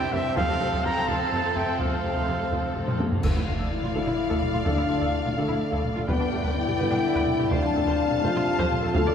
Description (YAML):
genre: cinematic, epic orchestral film score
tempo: 84 BPM (dotted quarters)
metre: 6/8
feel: straight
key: F major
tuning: A4 = 440 Hz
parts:
  - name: warm symphonic violin section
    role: melody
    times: 0.0-9.1 s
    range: G4 to A5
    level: -32 LUFS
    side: left 4 dB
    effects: none
  - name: dark symphonic violin section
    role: second line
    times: 0.0-9.1 s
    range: C5 to G5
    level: -36 LUFS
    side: left 3 dB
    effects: none
  - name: warm studio viola section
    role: accompaniment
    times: 0.0-9.1 s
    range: C3 to F5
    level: -34 LUFS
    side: right 1 dB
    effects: none
  - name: dark trombone section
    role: sustained chords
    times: 0.0-9.1 s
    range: F2 to B3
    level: -36 LUFS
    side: right 1 dB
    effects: none
  - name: mellow French horn section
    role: sustained chords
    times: 0.0-9.1 s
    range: A3 to C5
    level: -28 LUFS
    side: left 4 dB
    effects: none
  - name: warm trumpet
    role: stabs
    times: 0.0-9.1 s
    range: E5 to Bb5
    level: -31 LUFS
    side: right 2 dB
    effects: none
  - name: warm studio cello section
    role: bass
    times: 0.0-9.1 s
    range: D2 to C3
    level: -34 LUFS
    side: right 2 dB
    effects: none
  - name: mellow tuba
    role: bass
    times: 0.1-9.0 s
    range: F1 to D2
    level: -36 LUFS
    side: right 2 dB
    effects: none
  - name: warm symphonic double bass section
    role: bass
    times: 0.1-9.0 s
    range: F1 to D2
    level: -36 LUFS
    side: right 2 dB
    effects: none
  - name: solo taiko drums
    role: drums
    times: 0.1-9.1 s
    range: none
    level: -29 LUFS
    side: equal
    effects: none
  - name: cymbal swell, clash cymbals and concert bass drum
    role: percussion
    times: 0.4-4.1 s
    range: none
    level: -37 LUFS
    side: equal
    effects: none
  - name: timpani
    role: percussion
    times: 0.4-3.2 s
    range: F2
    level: -37 LUFS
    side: equal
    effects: none
room: wet church reverb, RT60 2.9 s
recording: recorded in a church or concert hall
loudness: -22 LUFS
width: side -8 dB against mid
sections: 0.0-3.2 A section; 3.2-9.1 B section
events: timpani fill 0.4-3.2; drum fill 2.9-3.2; band accent 3.2-3.7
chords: 0.4 F; 3.2 Dmadd9; 6.1 G; 7.5 F